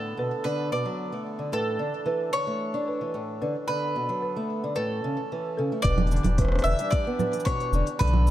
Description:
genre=folktronica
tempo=111 BPM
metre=4/4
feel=straight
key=unclear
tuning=A4 = 440 Hz
part: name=bowl-back mandolin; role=melody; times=0.0-8.3 s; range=A4 to E5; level=-30 LUFS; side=equal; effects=ping-pong delay
part: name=accordion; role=sustained chords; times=0.0-8.3 s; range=D3 to A4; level=-38 LUFS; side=right 3 dB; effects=none
part: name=fingerpicked acoustic archtop guitar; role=arpeggios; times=0.0-8.3 s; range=A2 to D4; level=-30 LUFS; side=equal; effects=ping-pong delay
part: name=folk marimba with medium hard mallets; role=second line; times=0.2-8.3 s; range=A4 to B4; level=-35 LUFS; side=equal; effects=ping-pong delay
part: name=warm sub bass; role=bass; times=5.8-8.3 s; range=E1 to B1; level=-23 LUFS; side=equal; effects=none
part: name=electronic kick drum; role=drums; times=5.8-8.1 s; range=none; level=-25 LUFS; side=equal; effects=overdrive
part: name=organic electronic drum kit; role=drums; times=5.8-8.3 s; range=cabasa, congas, hi-hat, rim click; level=-30 LUFS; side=right 3 dB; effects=overdrive
room=light reverb, small room ambience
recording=dark, warm production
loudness=-24 LUFS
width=side -13 dB against mid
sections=0.0-5.8 A section; 5.8-8.3 B section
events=none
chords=0.0 Bm7; 1.5 Asus4; 3.7 Bm7; 4.8 A; 5.8 Em7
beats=0.44 0.98 | 1.52 2.06 2.60 3.14 | 3.68 4.22 4.76 5.30 | 5.84 6.38 6.93 7.47 | 8.01

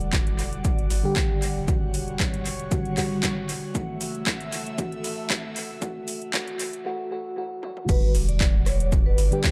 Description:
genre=deep house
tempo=116 BPM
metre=4/4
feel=swing 54% on 16ths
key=E dorian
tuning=A4 = 440 Hz
part: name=airy breathy pad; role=sustained chords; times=0.0-9.5 s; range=G3 to F#5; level=-39 LUFS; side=equal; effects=chorus, phaser, sidechain pumping
part: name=mellow FM electric piano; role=stabs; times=0.0-9.5 s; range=D3 to G4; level=-33 LUFS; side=equal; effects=chorus, tremolo, cassette tape, sidechain pumping, dub echo
part: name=sub bass with octave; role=bass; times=0.0-9.3 s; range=E1 to A1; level=-31 LUFS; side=equal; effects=sidechain pumping
part: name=house drum kit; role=drums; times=0.0-9.5 s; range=crash cymbal, handclaps, hi-hat, rim click, toms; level=-33 LUFS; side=equal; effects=overdrive, tape echo
part: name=electronic kick drum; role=drums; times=0.1-9.5 s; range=none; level=-27 LUFS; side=equal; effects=none
part: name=electronic snare drum and shaker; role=drums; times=0.1-9.5 s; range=none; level=-41 LUFS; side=equal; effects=none
part: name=vibraphone with medium mallets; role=melody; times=7.9-9.3 s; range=B4 to D5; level=-33 LUFS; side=equal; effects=tape echo
room=light reverb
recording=echo-heavy mix, high-pass filter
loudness=-25 LUFS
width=mono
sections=0.0-7.9 A section; 7.9-9.5 B section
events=build-up 0.0-7.9; filter sweep 0.0-7.9; drum fill 7.6; drop 7.9-9.5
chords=0.0 Em9; 3.8 F#m7; 7.9 Em9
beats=0.13 0.65 1.16 | 1.68 2.20 2.71 3.23 | 3.75 4.27 4.78 5.30 | 5.82 6.34 6.85 7.37 | 7.89 8.40 8.92 9.44

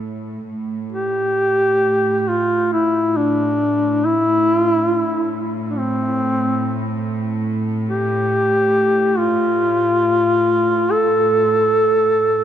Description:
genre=caucasian folk, Caucasian lament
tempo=free time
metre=none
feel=none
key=A minor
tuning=A4 = 440 Hz
part: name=rich symphonic cello section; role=drone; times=0.0-12.4 s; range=A2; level=-24 LUFS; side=right 2 dB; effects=none
part: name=mellow duduk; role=melody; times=0.9-12.4 s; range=C4 to A4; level=-16 LUFS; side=equal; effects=none
room=moderate cathedral reverb, RT60 4.6 s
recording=dark, warm production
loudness=-15 LUFS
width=side -10 dB against mid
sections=0.5-12.4 A section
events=none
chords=none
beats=free time

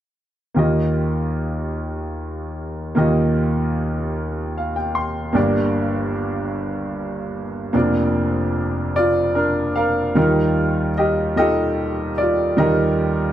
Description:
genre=folk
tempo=50 BPM (dotted quarters)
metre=6/8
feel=straight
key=unclear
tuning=A4 = 440 Hz
part: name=warm grand piano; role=melody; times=0.5-13.3 s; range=F1 to C6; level=-18 LUFS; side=equal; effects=none
room=light reverb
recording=close, detailed microphones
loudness=-18 LUFS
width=side -11 dB against mid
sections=0.6-10.2 A section; 10.2-13.3 B section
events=grand piano fill 4.2-5.4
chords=0.6 Ebadd9; 5.4 Gm; 7.7 Bb/F; 10.2 Ebadd9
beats=| 0.56 1.77 | 2.98 4.17 | 5.36 6.55 | 7.75 8.95 | 10.16 11.37 | 12.57

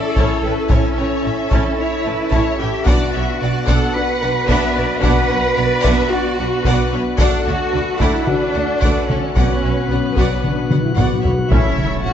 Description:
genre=cinematic, epic orchestral film score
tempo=111 BPM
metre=4/4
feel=straight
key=B minor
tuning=A4 = 440 Hz
part: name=warm symphonic violin section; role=melody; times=0.0-12.1 s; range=A4 to F#5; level=-27 LUFS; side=left 6 dB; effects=none
part: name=chamber organ, sparkling flutes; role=sustained chords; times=0.0-12.1 s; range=A3 to F#5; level=-24 LUFS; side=equal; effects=none
part: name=mellow French horn section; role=sustained chords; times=0.0-11.7 s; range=C#4 to F#4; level=-26 LUFS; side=left 4 dB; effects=none
part: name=warm symphonic cello section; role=bass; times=0.0-12.1 s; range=B3 to B4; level=-22 LUFS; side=right 2 dB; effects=none
part: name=rich symphonic violin section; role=second line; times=0.2-12.1 s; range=A4 to A5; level=-28 LUFS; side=left 3 dB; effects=none
part: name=warm symphonic viola section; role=accompaniment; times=0.2-12.1 s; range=A3 to F#4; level=-25 LUFS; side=right 2 dB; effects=none
part: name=warm symphonic double bass section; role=bass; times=0.2-12.1 s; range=A1 to D2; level=-23 LUFS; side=right 3 dB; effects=none
part: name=solo taiko drums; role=drums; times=0.2-12.0 s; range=none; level=-19 LUFS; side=equal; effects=none
part: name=timpani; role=percussion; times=9.4-11.4 s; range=B2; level=-24 LUFS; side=left 3 dB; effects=none
part: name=bright trombone section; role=sustained chords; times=11.5-11.7 s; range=E3 to A3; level=-30 LUFS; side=right 2 dB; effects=none
part: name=impact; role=sound effects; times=11.7-12.1 s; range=none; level=-25 LUFS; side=equal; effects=none
room=moderate concert hall reverb, RT60 1.9 s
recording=nothing above 7.9 kHz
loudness=-14 LUFS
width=side -9 dB against mid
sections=0.0-11.5 A section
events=timpani fill 9.4-11.5; drum fill 10.7-11.5; impact 11.5-12.1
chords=0.0 A; 2.9 Bm; 7.2 D; 9.4 Bm; 11.5 A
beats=0.17 | 0.71 1.25 1.79 2.33 | 2.87 3.41 3.95 4.49 | 5.03 5.57 6.11 6.66 | 7.20 7.74 8.28 8.81 | 9.35 9.89 10.43 10.97 | 11.51 12.05

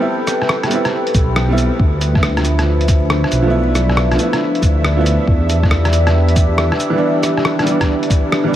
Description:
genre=future garage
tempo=138 BPM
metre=4/4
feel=swing 65% on 16ths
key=D dorian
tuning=A4 = 440 Hz
part: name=clear upright piano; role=accompaniment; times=0.0-8.6 s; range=E3 to E4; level=-20 LUFS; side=right 2 dB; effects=sidechain pumping, tape echo
part: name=dark analog pad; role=sustained chords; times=0.0-8.6 s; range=F3 to G5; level=-19 LUFS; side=left 1 dB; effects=chorus, phaser, sidechain pumping
part: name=lo-fi sampler-style drum kit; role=drums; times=0.3-8.4 s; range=cabasa, hi-hat, rim click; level=-21 LUFS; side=equal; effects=none
part: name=dark detuned saw bass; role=bass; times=1.1-8.6 s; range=B1 to E2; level=-15 LUFS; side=equal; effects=tube saturation, sidechain pumping
part: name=electronic kick drum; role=drums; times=1.1-8.2 s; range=none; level=-14 LUFS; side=equal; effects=none
room=moderate huge ambient reverb, RT60 8.1 s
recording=dreamy mix soaked in reverb, vinyl crackle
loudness=-12 LUFS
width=side -12 dB against mid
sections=0.0-8.6 A section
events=none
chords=0.0 Am9; 1.8 Dm69; 5.3 Em7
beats=| 0.06 0.49 0.93 1.36 | 1.80 2.23 2.67 3.10 | 3.54 3.97 4.41 4.84 | 5.28 5.71 6.15 6.58 | 7.02 7.45 7.89 8.32

